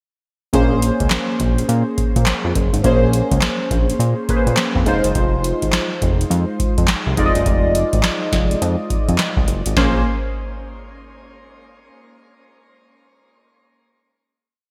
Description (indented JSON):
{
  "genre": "R&B, new jack swing",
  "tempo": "104 BPM",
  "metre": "4/4",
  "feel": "swing 63% on 16ths",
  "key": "Bb minor",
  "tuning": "A4 = 441 Hz",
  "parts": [
    { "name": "warm analog keys", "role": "accompaniment", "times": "0.5-10.0 s", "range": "Ab3 to Eb5", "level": "-22 LUFS", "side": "equal", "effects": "chorus, phaser, shimmer reverb" },
    { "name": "fat analog bass", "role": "bass", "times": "0.5-10.0 s", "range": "F1 to Bb2", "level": "-22 LUFS", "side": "equal", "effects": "none" },
    { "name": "booming analog drum machine", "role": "drums", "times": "0.5-9.9 s", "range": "handclaps, hi-hat, kick drum, snare drum", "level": "-22 LUFS", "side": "equal", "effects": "overdrive" }
  ],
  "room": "moderate lush hall reverb, RT60 1.7 s",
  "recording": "bright 1980s-style digital production",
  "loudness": "-18 LUFS",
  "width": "mono",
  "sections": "0.5-9.8 verse; 9.8-12.1 final chord",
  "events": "none",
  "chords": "0.5 Bbm9; 4.9 Fm7; 9.8 Bbm9"
}